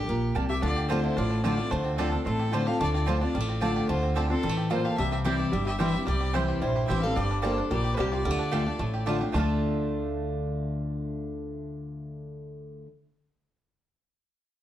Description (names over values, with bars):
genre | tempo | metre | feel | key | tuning
bluegrass | 220 BPM | 4/4 | straight | D minor | A4 = 441 Hz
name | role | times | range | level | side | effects
rich fiddle | melody | 0.0-9.0 s | G4 to F5 | -33 LUFS | left 1 dB | tape echo
picked steel-string acoustic guitar | accompaniment | 0.0-12.9 s | G2 to A4 | -29 LUFS | left 1 dB | none
upright bass | bass | 0.0-12.8 s | G1 to D2 | -31 LUFS | equal | none
mandolin | stabs | 0.3-12.9 s | A3 to A5 | -36 LUFS | right 5 dB | none
lap resonator guitar | second line | 0.5-9.0 s | C4 to A4 | -34 LUFS | left 2 dB | none
bluegrass banjo | melody | 0.6-12.9 s | D3 to A4 | -36 LUFS | right 3 dB | none
room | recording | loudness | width
wet studio reverb, RT60 0.8 s | heard from further back in the room | -25 LUFS | side -12 dB against mid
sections
0.0-9.3 A section; 9.3-11.5 B section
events
none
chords
0.0 Gmadd9; 0.6 Dm7; 5.0 C; 7.2 Gmadd9; 8.3 Dm